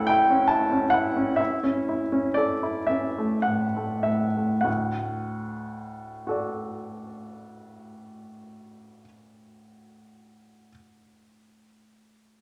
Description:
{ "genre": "classical, romantic nocturne for solo piano", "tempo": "32-50 BPM (dotted quarters)", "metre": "12/8", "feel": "rubato", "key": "D major", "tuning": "A4 = 437 Hz", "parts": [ { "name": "clear baby grand piano", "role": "solo", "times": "0.0-12.4 s", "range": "D2 to A5", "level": "-26 LUFS", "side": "equal", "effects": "none" } ], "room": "wet recital hall reverb, RT60 1.4 s", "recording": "none", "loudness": "-25 LUFS", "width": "mono", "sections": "0.0-4.7 A section; 4.7-11.0 B section", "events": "slowing down 0.0-4.7", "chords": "0.0 A/D; 4.7 D", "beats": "0.07 1.38 2.88 | 4.66 6.27 7.86 9.44" }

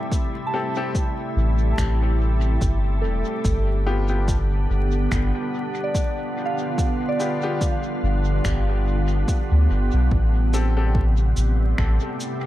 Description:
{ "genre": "ambient dub", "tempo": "72 BPM", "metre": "4/4", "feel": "swing 55% on 16ths", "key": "A minor", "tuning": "A4 = 441 Hz", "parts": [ { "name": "soft additive organ-like pad", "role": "sustained chords", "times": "0.0-12.5 s", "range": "C3 to G4", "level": "-27 LUFS", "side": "equal", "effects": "ensemble chorus, built-in reverb" }, { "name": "soft synth bell", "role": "arpeggios", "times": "0.0-12.5 s", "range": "A4 to A5", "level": "-32 LUFS", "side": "right 1 dB", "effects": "chorus, dub echo" }, { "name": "electronic kick drum", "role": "drums", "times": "0.1-12.0 s", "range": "none", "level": "-24 LUFS", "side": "equal", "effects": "overdrive" }, { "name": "electronic shaker and finger snaps", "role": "drums", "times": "0.1-12.4 s", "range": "none", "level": "-34 LUFS", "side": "equal", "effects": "dub echo" }, { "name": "bright upright piano", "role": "stabs", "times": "0.5-11.0 s", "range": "B3 to A4", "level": "-32 LUFS", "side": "left 3 dB", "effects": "dub echo" }, { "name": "soft dub sub bass", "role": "bass", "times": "1.4-12.0 s", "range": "E1 to D2", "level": "-20 LUFS", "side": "equal", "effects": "tube saturation" } ], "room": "digital ambience", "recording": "echo-heavy mix, vinyl crackle", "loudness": "-19 LUFS", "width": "side -14 dB against mid", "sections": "0.0-10.1 A section; 10.1-12.5 A section", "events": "filter sweep on synth bell 0.0-10.1", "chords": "0.0 Am7; 3.5 G7; 10.1 Am7", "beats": "| 0.12 0.95 1.78 2.62 | 3.45 4.28 5.12 5.95 | 6.78 7.62 8.45 9.28 | 10.12 10.95 11.78" }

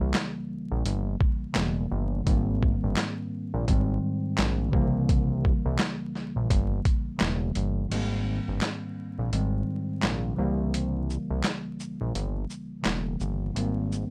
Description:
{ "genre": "hip hop, boom-bap hip-hop", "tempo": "85 BPM", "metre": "4/4", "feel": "swing 60% on 16ths", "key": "unclear", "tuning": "A4 = 440 Hz", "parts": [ { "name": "mellow tine electric piano", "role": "accompaniment", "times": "0.0-14.1 s", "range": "C2 to C4", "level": "-33 LUFS", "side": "equal", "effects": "cassette tape, high-pass filter, low-pass filter" }, { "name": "fat analog bass", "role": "bass", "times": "0.0-14.0 s", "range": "E1 to C2", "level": "-31 LUFS", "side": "equal", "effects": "none" }, { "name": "boom bap sampler-style drum kit", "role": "drums", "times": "0.1-14.1 s", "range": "crash cymbal, handclaps, hi-hat, kick drum, shaker, snare drum", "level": "-29 LUFS", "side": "equal", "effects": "vintage 12-bit sampler grit" } ], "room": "little or no reverb", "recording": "vinyl crackle", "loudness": "-28 LUFS", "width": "mono", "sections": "0.0-7.9 A section; 7.9-14.1 A section", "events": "break 7.9-14.1", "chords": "0.0 C7b9; 2.3 Abmaj7; 3.7 Abmaj9; 4.7 C7b9; 7.9 Abmaj7; 9.3 Abmaj9; 10.4 C7b9; 13.6 Abmaj7", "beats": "0.15 0.86 1.56 | 2.27 2.97 3.68 4.38 | 5.09 5.80 6.50 7.21 | 7.91 8.62 9.33 10.03 | 10.74 11.44 12.15 12.86 | 13.56" }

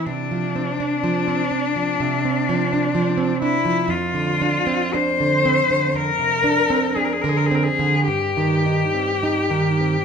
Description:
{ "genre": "romantic duo for cello and classical guitar", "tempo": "52-64 BPM", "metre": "4/4", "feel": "rubato", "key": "unclear", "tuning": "A4 = 440 Hz", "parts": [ { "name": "rich cello", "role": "melody", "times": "0.0-10.0 s", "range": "D4 to C5", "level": "-20 LUFS", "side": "left 4 dB", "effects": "none" }, { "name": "nylon-string guitar", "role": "accompaniment", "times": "0.0-10.0 s", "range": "F2 to Eb4", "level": "-21 LUFS", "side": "right 4 dB", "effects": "none" } ], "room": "moderate recital hall reverb, RT60 1.5 s", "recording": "minimal, uncompressed stereo recording", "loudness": "-18 LUFS", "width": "side -6 dB against mid", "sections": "0.0-10.0 A section", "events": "none", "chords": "0.1 Dm7/C; 3.9 Fm6; 8.1 Cm/G", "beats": "| 0.06 1.02 1.99 2.95 | 3.90 4.95 5.95 6.97 | 8.08 9.22" }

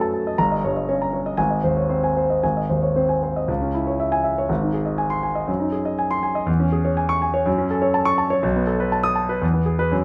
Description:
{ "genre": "classical, virtuoso piano study", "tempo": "120 BPM", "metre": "2/4", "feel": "rubato", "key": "C# minor", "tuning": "A4 = 438 Hz", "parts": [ { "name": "warm concert grand piano", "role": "solo", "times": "0.0-10.0 s", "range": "G1 to D#6", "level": "-21 LUFS", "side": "equal", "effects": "none" } ], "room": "light reverb", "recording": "none", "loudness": "-21 LUFS", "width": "mono", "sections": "0.0-3.5 A section; 3.5-10.0 B section", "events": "none", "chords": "0.4 D#7/G; 1.4 G#; 3.5 C#m; 4.5 G#; 5.5 G#7/F#; 6.5 C#m/E; 7.5 F#m; 8.4 B7; 9.4 E", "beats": "| 0.38 0.88 | 1.38 1.89 | 2.42 2.96 | 3.48 3.99 | 4.49 4.99 | 5.48 5.98 | 6.48 6.98 | 7.47 7.95 | 8.44 8.93 | 9.42 9.93" }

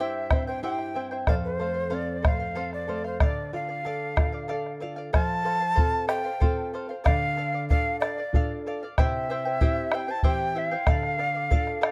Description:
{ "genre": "andean folk, Andean ensemble", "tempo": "94 BPM", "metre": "3/4", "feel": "straight", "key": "unclear", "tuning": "A4 = 439 Hz", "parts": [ { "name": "breathy bright large quena", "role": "melody", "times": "0.0-11.9 s", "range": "C5 to A5", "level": "-32 LUFS", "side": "equal", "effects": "none" }, { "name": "charango", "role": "accompaniment", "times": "0.0-11.9 s", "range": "E4 to G5", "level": "-36 LUFS", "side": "equal", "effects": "none" }, { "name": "nylon-string guitar", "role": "accompaniment", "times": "0.0-11.9 s", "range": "F2 to A4", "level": "-36 LUFS", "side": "equal", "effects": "none" }, { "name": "bombo", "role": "percussion", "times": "0.3-11.9 s", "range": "none", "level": "-26 LUFS", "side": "equal", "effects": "none" } ], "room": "small room ambience", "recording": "rough home demo mix", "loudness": "-27 LUFS", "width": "mono", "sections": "0.0-5.1 A section; 5.1-11.9 B section", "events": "none", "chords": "0.0 C; 1.3 F; 3.2 Dm; 5.1 F; 7.1 Dm; 9.0 C; 10.9 Dm", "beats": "0.64 | 1.28 1.93 2.57 | 3.21 3.86 4.50 | 5.14 5.78 6.42 | 7.06 7.70 8.33 | 8.97 9.60 10.24 | 10.87 11.50" }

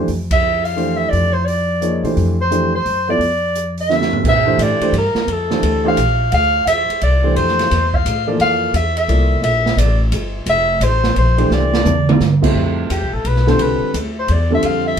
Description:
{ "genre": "modal jazz", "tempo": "173 BPM", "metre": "3/4", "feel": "swing 65% on 8ths", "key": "Bb lydian from 4.2 s", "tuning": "A4 = 440 Hz", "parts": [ { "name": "warm baby grand piano", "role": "accompaniment", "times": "0.0-15.0 s", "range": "A2 to E5", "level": "-19 LUFS", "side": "right 1 dB", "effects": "none" }, { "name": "upright bass", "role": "bass", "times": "0.0-15.0 s", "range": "F1 to C3", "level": "-18 LUFS", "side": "equal", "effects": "none" }, { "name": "open jazz drum kit", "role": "drums", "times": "0.1-15.0 s", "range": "crash cymbal, hi-hat, kick drum, ride cymbal, snare drum, toms", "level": "-21 LUFS", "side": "right 3 dB", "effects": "none" }, { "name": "mellow soprano saxophone", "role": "melody", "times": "0.3-15.0 s", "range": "G4 to F5", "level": "-18 LUFS", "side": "equal", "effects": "none" } ], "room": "moderate studio reverb, RT60 0.5 s", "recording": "band playing live in one room", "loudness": "-14 LUFS", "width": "side -8 dB against mid", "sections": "0.0-4.2 A section; 4.2-12.6 B section; 12.6-15.0 C section", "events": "band accent 0.3; drum fill 3.9-4.2, 11.5-12.2; soprano saxophone solo 12.6-15.0", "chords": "0.1 Dm7/F; 4.2 Bbmaj9#11; 11.5 C69; 12.6 Fmaj9#11", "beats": "| 0.09 0.43 0.78 | 1.13 1.47 1.82 | 2.17 2.51 2.86 | 3.21 3.55 3.90 | 4.24 4.59 4.94 | 5.28 5.63 5.97 | 6.32 6.67 7.01 | 7.36 7.71 8.05 | 8.40 8.74 9.09 | 9.44 9.78 10.13 | 10.47 10.82 11.17 | 11.51 11.86 12.21 | 12.55 12.90 13.24 | 13.59 13.94 14.28 | 14.63 14.98" }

